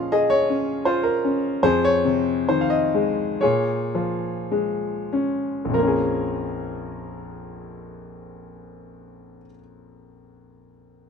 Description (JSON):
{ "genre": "classical, lyrical solo piano", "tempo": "46-86 BPM", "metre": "4/4", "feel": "rubato", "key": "Bb minor", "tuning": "A4 = 440 Hz", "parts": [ { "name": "clear grand piano", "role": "solo", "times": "0.0-11.1 s", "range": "Bb1 to F5", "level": "-21 LUFS", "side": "left 1 dB", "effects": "none" } ], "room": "light reverb", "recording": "minimal, uncompressed stereo recording", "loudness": "-20 LUFS", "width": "side -6 dB against mid", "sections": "0.0-5.7 A section; 5.7-10.7 B section", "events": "slowing down 0.0-5.7", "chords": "0.0 Bbm7; 1.6 Fm7; 3.4 Bbm7" }